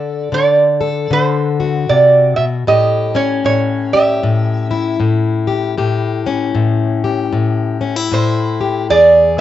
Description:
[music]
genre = acoustic country blues, solo or duo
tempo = 77 BPM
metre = 4/4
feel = swing 61% on 8ths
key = A mixolydian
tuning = A4 = 440 Hz
[part]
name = lap resonator guitar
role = melody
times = 0.0-9.3 s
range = C5 to E5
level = -12 LUFS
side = right 3 dB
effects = none
[part]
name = fingerpicked plugged-in steel-string acoustic guitar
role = accompaniment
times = 0.0-9.4 s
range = E2 to A4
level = -15 LUFS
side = left 4 dB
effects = cassette tape
[sound]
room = moderate studio reverb, RT60 0.6 s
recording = home recording on cassette, nothing above 7.8 kHz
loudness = -12 LUFS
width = side -12 dB against mid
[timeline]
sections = 0.0-9.4 A section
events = none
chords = 0.0 D7; 2.7 A7; 8.9 E7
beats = 0.32 1.10 1.89 | 2.67 3.45 4.23 5.01 | 5.79 6.56 7.34 8.12 | 8.89

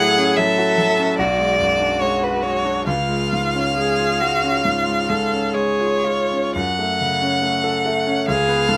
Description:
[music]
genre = classical, slow romantic movement for piano trio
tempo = 56-76 BPM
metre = 4/4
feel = rubato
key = F# minor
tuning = A4 = 440 Hz
[part]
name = rich violin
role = melody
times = 0.0-8.8 s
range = B4 to F#5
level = -22 LUFS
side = equal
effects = none
[part]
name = rich cello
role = second line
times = 0.0-8.8 s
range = E#4 to A4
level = -25 LUFS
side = equal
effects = none
[part]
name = clear grand piano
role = accompaniment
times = 0.0-8.8 s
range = B1 to A4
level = -24 LUFS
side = equal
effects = none
[sound]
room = light reverb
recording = none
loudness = -19 LUFS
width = mono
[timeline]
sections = 0.0-8.8 A section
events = none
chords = 0.0 F#m/A; 1.2 G#m7b5/B; 2.9 C#; 6.6 F#m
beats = 0.38 1.19 2.02 | 2.87 3.77 4.65 5.55 | 6.56 7.43 8.28

